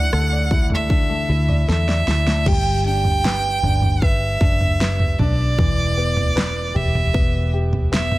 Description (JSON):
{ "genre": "pop ballad", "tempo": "77 BPM", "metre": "4/4", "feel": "straight", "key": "G major", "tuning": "A4 = 441 Hz", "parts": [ { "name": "clear violin", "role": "melody", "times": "0.0-8.2 s", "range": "D5 to G5", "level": "-23 LUFS", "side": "right 3 dB", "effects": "none" }, { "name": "warm baby grand piano", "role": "accompaniment", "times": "0.0-8.2 s", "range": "D3 to D5", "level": "-26 LUFS", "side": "left 3 dB", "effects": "none" }, { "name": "vintage muted fingered electric bass", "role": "bass", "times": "0.0-8.2 s", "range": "E1 to E2", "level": "-20 LUFS", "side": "equal", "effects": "none" }, { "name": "pop drum kit", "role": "drums", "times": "0.1-8.2 s", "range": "crash cymbal, kick drum, rim click, snare drum, toms", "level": "-20 LUFS", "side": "equal", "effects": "none" } ], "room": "digital ambience", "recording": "dense, heavily limited modern master", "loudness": "-16 LUFS", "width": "side -18 dB against mid", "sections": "0.0-2.5 A section; 2.5-8.2 B section", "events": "drum fill 1.7-2.5", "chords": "0.0 Dsus2; 2.5 G6; 5.6 Em7", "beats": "0.13 0.91 1.69 | 2.47 3.25 4.03 4.81 | 5.59 6.37 7.14 7.92" }